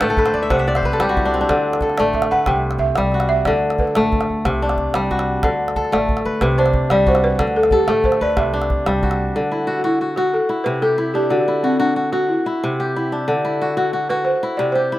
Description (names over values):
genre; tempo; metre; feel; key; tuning
west african traditional, West African string and xylophone music; 122 BPM (dotted quarters); 12/8; straight; D mixolydian; A4 = 440 Hz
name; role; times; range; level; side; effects
balafon; melody; 0.0-15.0 s; C4 to G5; -20 LUFS; equal; none
kora; arpeggios; 0.0-15.0 s; C3 to A5; -18 LUFS; left 1 dB; none
upright bass; bass; 0.0-9.3 s; A1 to D2; -26 LUFS; equal; none
calabash; percussion; 0.0-9.2 s; none; -23 LUFS; right 1 dB; none
room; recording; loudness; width
light reverb, small room ambience; rough home demo mix; -16 LUFS; side -15 dB against mid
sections
0.0-9.3 A section; 9.3-15.0 B section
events
kora fill 0.0-1.5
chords
0.0 D; 0.5 C5; 1.5 D5; 2.5 C; 3.5 D; 4.4 C5; 5.4 D; 6.4 C5; 7.4 D; 8.4 C; 9.3 D; 10.3 C; 11.3 D; 12.3 C; 13.3 D; 14.3 C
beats
0.02 0.51 1.00 | 1.49 1.99 2.48 2.97 | 3.46 3.95 4.44 4.93 | 5.42 5.91 6.40 6.89 | 7.38 7.88 8.37 8.86 | 9.35 9.84 10.33 10.82 | 11.31 11.81 12.30 12.79 | 13.28 13.78 14.27 14.76